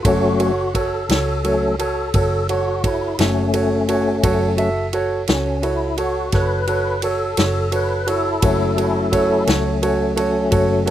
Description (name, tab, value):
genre	slow blues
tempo	57 BPM (dotted quarters)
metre	12/8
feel	straight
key	F# minor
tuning	A4 = 440 Hz
part	warm upright piano	accompaniment	0.0-10.9 s	F#4 to E5	-21 LUFS	right 3 dB	slapback echo
part	tonewheel organ	sustained chords	0.0-10.9 s	F#3 to B4	-21 LUFS	left 3 dB	slow rotary speaker, overdrive, chorus vibrato
part	vintage muted fingered electric bass	bass	0.0-10.9 s	F#1 to C#2	-24 LUFS	equal	none
part	natural country drum kit	drums	0.0-10.9 s	kick drum, ride cymbal, snare drum	-24 LUFS	equal	none
room	little or no reverb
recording	recorded outdoors, with no room sound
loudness	-16 LUFS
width	side -12 dB against mid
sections	0.0-10.9 A section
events	tonewheel organ solo 0.0-10.9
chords	0.0 F#m